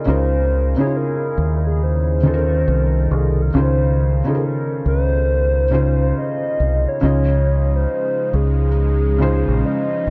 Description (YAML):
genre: hip hop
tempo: 69 BPM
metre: 4/4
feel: swing 63% on 16ths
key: Db major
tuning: A4 = 435 Hz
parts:
  - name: hollow clarinet-like synth lead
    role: melody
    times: 0.0-10.1 s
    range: Ab4 to Eb5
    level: -25 LUFS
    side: equal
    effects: chorus, low-pass filter
  - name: felt-muted upright piano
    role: accompaniment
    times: 0.0-10.1 s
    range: Db3 to Eb5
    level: -23 LUFS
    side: equal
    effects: cassette tape, low-pass filter
  - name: deep dub fingered electric bass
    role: bass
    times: 0.1-10.1 s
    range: Bb1 to Eb2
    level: -20 LUFS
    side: equal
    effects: none
  - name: lush unison pad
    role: sustained chords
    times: 7.0-10.1 s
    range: F3 to Eb4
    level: -31 LUFS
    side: equal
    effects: chorus, low-pass filter
room: light reverb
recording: dark, warm production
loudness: -18 LUFS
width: mono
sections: 0.0-7.0 A section; 7.0-10.1 B section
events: none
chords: 0.0 Dbmaj9